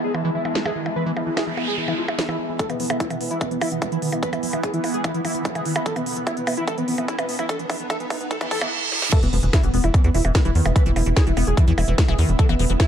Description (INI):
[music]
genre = psychedelic trance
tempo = 147 BPM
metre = 4/4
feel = straight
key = E major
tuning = A4 = 440 Hz
[part]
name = wide unison lead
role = melody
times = 0.0-12.9 s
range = B3 to B4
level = -27 LUFS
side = equal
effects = phaser, cassette tape, sidechain pumping, tape echo
[part]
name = bubbling stepped-filter texture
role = sustained chords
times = 0.0-12.9 s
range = E3 to B3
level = -32 LUFS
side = right 2 dB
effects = chorus, built-in reverb, sidechain pumping
[part]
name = liquid acid bass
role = riff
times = 0.0-12.9 s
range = D#3 to F4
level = -29 LUFS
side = moving between left 6 dB and right 5 dB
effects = phaser, auto-pan, sidechain pumping, tape echo
[part]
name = ethereal airy pad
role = texture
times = 0.0-12.9 s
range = B3 to B5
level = -33 LUFS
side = equal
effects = ensemble chorus, built-in reverb, sidechain pumping
[part]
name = techno drum kit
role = drums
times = 0.1-12.9 s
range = crash cymbal, hi-hat, percussion blips, snare drum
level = -28 LUFS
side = right 1 dB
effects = high-pass filter on perc, high-pass filter on snare, high-pass filter on hats, high-pass filter on cymbals, high-pass filter on room
[part]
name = noise sweep, riser, reverse cymbal and impact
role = sound effects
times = 1.3-10.8 s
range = none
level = -30 LUFS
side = right 2 dB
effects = none
[part]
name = electronic kick drum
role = drums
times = 2.6-12.9 s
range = none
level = -20 LUFS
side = equal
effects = high-pass filter on kick, high-pass filter on room
[part]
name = tight sequencer bass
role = bass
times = 9.2-12.8 s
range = E1 to E2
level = -20 LUFS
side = equal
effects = none
[sound]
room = light reverb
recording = dark, warm production, high-pass filter, low-pass filter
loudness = -19 LUFS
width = side -9 dB against mid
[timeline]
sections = 0.0-2.6 A section; 2.6-9.1 B section; 9.1-12.9 C section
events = filter sweep on acid bass 0.0-2.6, 2.6-9.1; filter sweep 0.0-2.6, 2.6-9.1; noise sweep 1.3-2.6; build-up 2.6-9.1; riser 2.6-8.7; drum fill 5.9-8.7, 8.9; reverse cymbal 8.3-9.1; drop 9.1-12.9; impact 9.1-10.8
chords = 0.0 E5